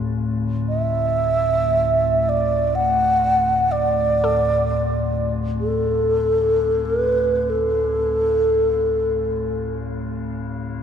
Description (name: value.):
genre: world meditative, free-time meditation music.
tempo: free time.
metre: none.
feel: none.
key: D major pentatonic.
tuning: A4 = 442 Hz.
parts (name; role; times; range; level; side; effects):
metallic inharmonic drone; drone; 0.0-10.8 s; D2 to A2; -24 LUFS; left 2 dB; chorus, built-in reverb.
hollow square pluck; texture; 0.0-10.8 s; A4 to D5; -31 LUFS; left 6 dB; chorus.
mellow wooden-headed alto flute; melody; 0.7-9.7 s; A4 to F#5; -18 LUFS; right 1 dB; ping-pong delay.
room: wet church reverb, RT60 3.4 s.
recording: none.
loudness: -18 LUFS.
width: side -8 dB against mid.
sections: 0.0-10.8 A section.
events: none.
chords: none.